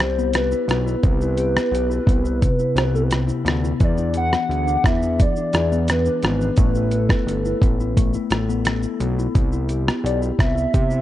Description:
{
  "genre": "indie pop, bedroom pop",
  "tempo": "87 BPM",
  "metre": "4/4",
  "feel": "straight",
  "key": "unclear",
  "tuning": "A4 = 441 Hz",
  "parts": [
    { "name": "warbly nostalgic lead", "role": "melody", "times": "0.0-11.0 s", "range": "A4 to F#5", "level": "-24 LUFS", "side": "equal", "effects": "lush chorus" },
    { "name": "mellow electric guitar", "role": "accompaniment", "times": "0.0-11.0 s", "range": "C3 to A4", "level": "-24 LUFS", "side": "left 4 dB", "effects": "wide subtle chorus, vibrato effect" },
    { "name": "fat analog bass", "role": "bass", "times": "0.0-11.0 s", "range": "G1 to C3", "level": "-23 LUFS", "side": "equal", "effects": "none" },
    { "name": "dusty soul sampler-style drum kit", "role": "drums", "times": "0.0-11.0 s", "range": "hi-hat, kick drum, rim click, shaker", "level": "-20 LUFS", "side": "equal", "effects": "none" }
  ],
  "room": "digital ambience",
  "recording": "cassette tape",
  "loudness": "-17 LUFS",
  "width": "side -13 dB against mid",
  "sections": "0.0-11.0 A section",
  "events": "none",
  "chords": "0.0 Cmaj7; 3.8 E7; 6.6 Asus2; 9.3 Cmaj7",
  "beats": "0.34 | 1.03 1.72 2.42 3.11 | 3.80 4.49 5.19 5.88 | 6.57 7.27 7.96 8.65 | 9.35 10.04 10.73"
}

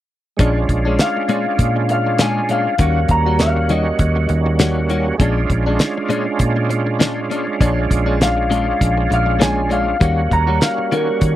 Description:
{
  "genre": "straight-eighth soul blues",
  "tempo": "100 BPM",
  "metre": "4/4",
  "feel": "swing 56% on 16ths",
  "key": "unclear",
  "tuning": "A4 = 440 Hz",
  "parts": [
    { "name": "overdriven tonewheel organ", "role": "accompaniment", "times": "0.4-11.4 s", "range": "G3 to F#4", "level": "-21 LUFS", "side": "right 4 dB", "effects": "slow rotary speaker, chorus vibrato" },
    { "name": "direct-recorded clean electric guitar", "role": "stabs", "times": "0.4-11.1 s", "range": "Bb2 to F#4", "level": "-22 LUFS", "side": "left 4 dB", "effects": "wide subtle chorus" },
    { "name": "vintage muted fingered electric bass", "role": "bass", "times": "0.4-11.4 s", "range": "Bb1 to Eb3", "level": "-19 LUFS", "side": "equal", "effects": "none" },
    { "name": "damped 70s drum kit", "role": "drums", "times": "0.4-11.4 s", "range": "hi-hat, kick drum, snare drum", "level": "-17 LUFS", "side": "equal", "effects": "none" },
    { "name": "electric guitar through a small old amp", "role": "melody", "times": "1.0-11.4 s", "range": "Bb4 to Bb5", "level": "-20 LUFS", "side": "left 2 dB", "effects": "none" }
  ],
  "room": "light reverb",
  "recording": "dry, close 1970s-style studio recording",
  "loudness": "-14 LUFS",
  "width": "side -13 dB against mid",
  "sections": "0.4-11.4 A section",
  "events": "none",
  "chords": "0.4 Bb7#9; 2.8 Eb7#9; 5.2 Bb7#9; 10.0 Eb7#9",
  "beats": "| 0.40 1.00 1.60 2.20 | 2.80 3.40 4.00 4.60 | 5.20 5.80 6.40 7.01 | 7.61 8.21 8.81 9.41 | 10.01 10.62 11.22"
}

